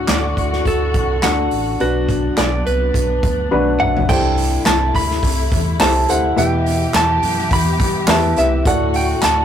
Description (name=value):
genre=piano-driven pop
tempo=105 BPM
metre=4/4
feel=swing 56% on 16ths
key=unclear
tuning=A4 = 439 Hz
part: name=direct-recorded clean electric guitar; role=melody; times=0.0-9.4 s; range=F#4 to B5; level=-20 LUFS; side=right 2 dB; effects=none
part: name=dark upright piano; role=accompaniment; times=0.0-9.4 s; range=G2 to B5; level=-21 LUFS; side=left 1 dB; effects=none
part: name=dark studio string section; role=sustained chords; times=0.0-9.4 s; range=C3 to G4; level=-24 LUFS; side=left 2 dB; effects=none
part: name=fingered electric bass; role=bass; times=0.1-9.4 s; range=A1 to G2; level=-21 LUFS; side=equal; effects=none
part: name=unplugged drum kit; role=drums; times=0.1-9.4 s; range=crash cymbal, handclaps, hi-hat, kick drum, snare drum, toms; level=-20 LUFS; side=equal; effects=none
room=moderate small room reverb, RT60 0.5 s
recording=rough rehearsal-room recording, warm saturation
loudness=-14 LUFS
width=side -9 dB against mid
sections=0.0-4.1 A section; 4.1-9.4 B section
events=upright piano fill 3.2-4.1; drum fill 3.5-4.1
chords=0.0 D; 1.8 Bm; 4.1 C6; 6.4 Em; 8.7 D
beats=0.09 0.66 1.23 | 1.80 2.37 2.94 3.52 | 4.09 4.66 5.23 5.80 | 6.37 6.94 7.51 8.09 | 8.66 9.23